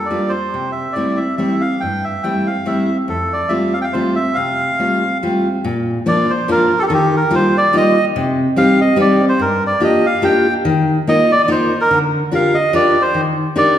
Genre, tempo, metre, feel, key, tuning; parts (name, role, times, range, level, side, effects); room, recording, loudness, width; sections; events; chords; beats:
musette; 143 BPM; 3/4; swing 54% on 8ths; F major, Bb major from 5.7 s; A4 = 441 Hz
melodica; melody; 0.0-13.8 s; G4 to G5; -16 LUFS; right 1 dB
fingerpicked steel-string acoustic guitar; accompaniment; 0.1-13.8 s; F2 to Bb4; -16 LUFS; left 1 dB
wet recital hall reverb, RT60 1.8 s; recorded in a church or concert hall; -13 LUFS; side -10 dB against mid
0.0-5.7 A section; 5.7-13.8 B section
0.0 Bb6; 0.5 C6; 3.1 Fadd9; 5.7 Bb; 6.9 Ebadd9; 8.2 Cm; 9.4 Gm7; 10.7 Ebsus2; 11.9 Bb6/D; 13.2 Ebmaj7
0.10 | 0.53 0.96 1.40 | 1.82 2.24 2.67 | 3.09 3.52 3.94 | 4.37 4.80 5.23 | 5.66 6.08 6.50 | 6.92 7.33 7.74 | 8.15 8.57 8.98 | 9.40 9.82 10.23 | 10.66 11.08 11.49 | 11.91 12.32 12.74 | 13.15 13.56